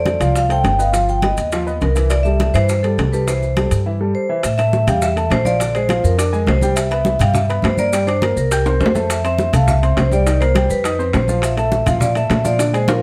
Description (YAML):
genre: Afro-Cuban jazz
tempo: 206 BPM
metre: 4/4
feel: straight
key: C major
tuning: A4 = 441 Hz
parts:
  - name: vibraphone with medium mallets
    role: melody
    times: 0.0-13.0 s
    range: A4 to G5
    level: -22 LUFS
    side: equal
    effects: plate reverb
  - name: warm upright piano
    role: accompaniment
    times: 0.0-13.0 s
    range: D3 to G6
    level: -25 LUFS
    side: equal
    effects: none
  - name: upright bass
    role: bass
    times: 0.0-13.0 s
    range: G1 to Bb2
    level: -21 LUFS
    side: equal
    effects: none
  - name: bongos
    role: percussion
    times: 0.1-13.0 s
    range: none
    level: -29 LUFS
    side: equal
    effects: none
  - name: congas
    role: percussion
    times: 0.1-13.0 s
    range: none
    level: -27 LUFS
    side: equal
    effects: none
  - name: maracas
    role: percussion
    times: 0.1-13.0 s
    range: none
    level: -35 LUFS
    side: equal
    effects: none
  - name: timbales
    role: percussion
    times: 0.1-13.0 s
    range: none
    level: -27 LUFS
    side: equal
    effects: none
room: moderate studio reverb, RT60 0.8 s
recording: none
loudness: -17 LUFS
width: mono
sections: 0.0-4.4 A section; 4.4-13.0 B section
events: drum fill 8.7-9.1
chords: 0.0 F69; 0.9 G7alt; 2.1 C6; 4.4 A5; 5.6 Bb9; 6.8 Cmaj7; 7.9 Gm; 8.5 C5; 10.3 Cm7; 10.8 F5; 11.4 Bb5